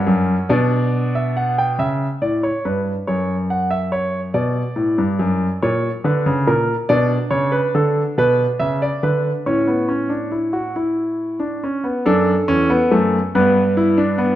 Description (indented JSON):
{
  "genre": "classical, baroque-style 3-part fugue for grand piano",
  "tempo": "47 BPM (dotted quarters)",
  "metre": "6/8",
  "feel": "straight",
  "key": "D major from 6.9 s",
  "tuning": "A4 = 438 Hz",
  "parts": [
    { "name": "warm concert grand piano", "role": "solo", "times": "0.0-14.4 s", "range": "E2 to G5", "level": "-16 LUFS", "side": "equal", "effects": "none" }
  ],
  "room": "wet recital hall reverb, RT60 1.5 s",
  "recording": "none",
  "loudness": "-16 LUFS",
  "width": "side -13 dB against mid",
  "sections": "0.0-1.8 A section; 1.8-12.1 B section; 12.1-14.4 C section",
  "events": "none",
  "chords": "0.0 F#5; 0.5 Bm; 1.8 C#m7b5; 3.1 F#5; 4.4 Bm; 5.6 A#m; 6.9 Bm; 9.5 A; 12.1 D; 13.3 G",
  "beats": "0.52 | 1.80 3.08 | 4.35 5.62 | 6.89 8.16 | 9.46 10.76 | 12.05 13.34"
}